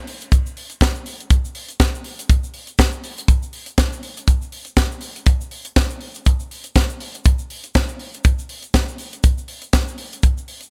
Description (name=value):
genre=disco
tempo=121 BPM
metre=4/4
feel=swing 56% on 16ths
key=none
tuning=none
part: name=tight funk drum kit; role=drums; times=0.1-10.7 s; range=hi-hat, kick drum, snare drum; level=-20 LUFS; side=equal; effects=none
part: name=tube shaker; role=percussion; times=0.2-10.7 s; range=none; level=-42 LUFS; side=equal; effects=none
room=little or no reverb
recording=none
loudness=-20 LUFS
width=mono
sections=0.0-10.7 A section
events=none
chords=none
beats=0.32 0.81 | 1.31 1.80 2.30 2.79 | 3.29 3.78 4.28 4.78 | 5.27 5.77 6.26 6.76 | 7.25 7.75 8.25 8.74 | 9.24 9.73 10.23